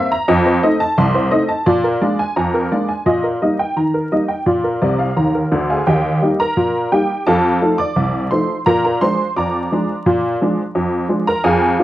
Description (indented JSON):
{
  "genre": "ragtime piano",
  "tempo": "86 BPM",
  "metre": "2/4",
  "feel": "straight",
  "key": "Eb major",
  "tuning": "A4 = 442 Hz",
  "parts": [
    { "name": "honky-tonk upright piano", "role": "solo", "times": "0.0-11.8 s", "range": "C2 to D6", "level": "-14 LUFS", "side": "equal", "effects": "none" }
  ],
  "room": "moderate club reverb, RT60 0.6 s",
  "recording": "worn, warbling old tape, cassette tape, vinyl crackle, warbly pitch drift",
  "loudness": "-14 LUFS",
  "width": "side -14 dB against mid",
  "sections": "0.0-5.9 A section; 5.9-11.8 B section",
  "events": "honky-tonk piano fill 4.8-5.9",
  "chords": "0.3 F7; 1.7 Bb7; 3.1 Eb/Bb; 4.5 Bb; 5.9 Eb; 7.3 F7; 8.7 Bb7/F",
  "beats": "| 0.27 0.97 | 1.66 2.36 | 3.06 3.76 | 4.47 5.17 | 5.87 6.57 | 7.27 7.96 | 8.66 9.36 | 10.05 10.75 | 11.44"
}